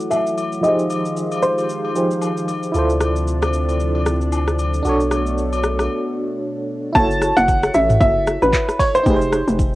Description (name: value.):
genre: amapiano.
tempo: 114 BPM.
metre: 4/4.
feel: swing 58% on 16ths.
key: unclear.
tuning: A4 = 440 Hz.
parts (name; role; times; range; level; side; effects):
warm baby grand piano; melody; 0.0-2.4, 7.0-9.4 s; B4 to A5; -18 LUFS; equal; low-pass filter, tape echo.
barking FM electric piano; accompaniment; 0.0-9.8 s; F3 to C#5; -22 LUFS; right 1 dB; chorus, tremolo, low-pass filter, cassette tape.
lush unison pad; sustained chords; 0.0-6.9 s; B2 to F#4; -27 LUFS; equal; chorus, sidechain pumping, low-pass filter, cassette tape.
afro-pop drum kit; drums; 0.0-9.7 s; handclaps, hi-hat, kick drum, rim click, shaker, toms; -21 LUFS; equal; cassette tape.
agogo bells and woodblock; percussion; 0.1-5.9 s; none; -28 LUFS; left 5 dB; none.
punchy sub bass; bass; 2.7-5.9 s; B1 to D2; -21 LUFS; equal; none.
hollow log drum bass; bass; 7.0-9.8 s; F1 to A1; -20 LUFS; equal; none.
room: light reverb.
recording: home recording on cassette.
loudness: -16 LUFS.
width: side -17 dB against mid.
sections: 0.0-7.0 A section; 7.0-9.8 B section.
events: break 5.9-7.0; drop 7.0-9.8.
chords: 0.0 F#m7; 0.6 Fm7; 2.7 Dm7; 4.8 Bm7; 7.0 F#m7; 9.1 Fm7.